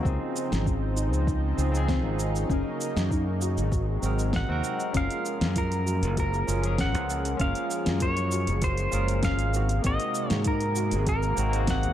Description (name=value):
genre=sunset chillout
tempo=98 BPM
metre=4/4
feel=straight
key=unclear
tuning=A4 = 440 Hz
part: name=barky tine electric piano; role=accompaniment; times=0.0-11.9 s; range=F3 to Bb4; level=-34 LUFS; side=equal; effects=auto-pan, digital delay
part: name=lush unison pad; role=sustained chords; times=0.0-11.9 s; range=C3 to Eb4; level=-33 LUFS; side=equal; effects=chorus
part: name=soft round pluck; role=arpeggios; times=0.0-11.9 s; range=C4 to Gb4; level=-37 LUFS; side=left 3 dB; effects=ensemble chorus, digital delay
part: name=modern bright fingered electric bass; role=bass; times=0.1-11.9 s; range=Gb1 to Ab2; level=-27 LUFS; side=equal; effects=none
part: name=electronic kick drum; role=drums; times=0.1-11.8 s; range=none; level=-29 LUFS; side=equal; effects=overdrive
part: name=smooth R&B drum kit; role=drums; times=0.1-11.9 s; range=hi-hat, shaker, snare drum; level=-34 LUFS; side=equal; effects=overdrive
part: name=pedal steel guitar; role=melody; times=4.4-11.9 s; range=Bb4 to Gb5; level=-31 LUFS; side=equal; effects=tape echo
room=light reverb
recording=dark, warm production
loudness=-24 LUFS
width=side -11 dB against mid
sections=0.0-4.9 A section; 4.9-11.9 B section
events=filter sweep on tine electric piano 0.0-4.9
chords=0.0 Dbmaj9; 2.5 Gb6; 3.7 Ab7; 4.9 Gbmaj9; 9.5 Ab9